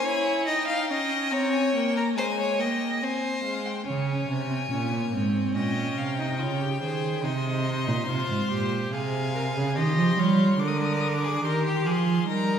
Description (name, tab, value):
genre	classical, baroque-style fugue for string quartet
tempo	71 BPM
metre	4/4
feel	straight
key	Db major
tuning	A4 = 440 Hz
part	rich violin	melody	0.0-12.6 s	F5 to Eb6	-32 LUFS	left 6 dB	none
part	clear violin	second line	0.0-12.6 s	G4 to F5	-30 LUFS	left 1 dB	none
part	rich viola	accompaniment	0.0-12.6 s	Ab3 to Bb4	-30 LUFS	equal	none
part	rich cello	bass	3.9-12.6 s	Ab2 to G3	-25 LUFS	right 3 dB	none
room	wet concert hall reverb, RT60 1.8 s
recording	heard from further back in the room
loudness	-23 LUFS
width	side -8 dB against mid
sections	0.0-3.9 A section; 3.9-12.6 B section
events	none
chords	0.5 Eb7; 2.2 Ab; 3.9 Db5; 5.6 Gdim/Bb; 7.2 Cm; 8.9 Fm/C; 10.6 Bb7/D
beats	| 0.47 1.32 2.17 3.02 | 3.87 4.72 5.56 6.41 | 7.25 8.09 8.93 9.77 | 10.61 11.44 12.28